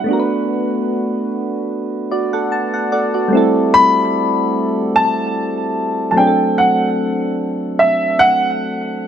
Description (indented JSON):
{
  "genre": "R&B",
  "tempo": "74 BPM",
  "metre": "4/4",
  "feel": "swing 54% on 16ths",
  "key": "unclear",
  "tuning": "A4 = 440 Hz",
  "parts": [
    { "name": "dark baby grand piano", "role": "melody", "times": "0.0-9.1 s", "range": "E5 to B5", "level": "-15 LUFS", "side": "equal", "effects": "ping-pong delay" },
    { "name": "soft electric-piano-like synth keys", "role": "accompaniment", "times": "0.0-9.1 s", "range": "F#3 to A5", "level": "-17 LUFS", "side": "right 1 dB", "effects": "chorus" }
  ],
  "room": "light reverb, small room reverb",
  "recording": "none",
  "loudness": "-14 LUFS",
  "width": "side -9 dB against mid",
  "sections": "0.0-9.1 A section",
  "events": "synth keys fill 2.1-3.3",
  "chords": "0.1 Bm7; 3.3 Am7; 6.2 D7",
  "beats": "| 0.08 0.90 1.71 2.52 | 3.33 4.14 4.95 5.76 | 6.57 7.38 8.19 9.00"
}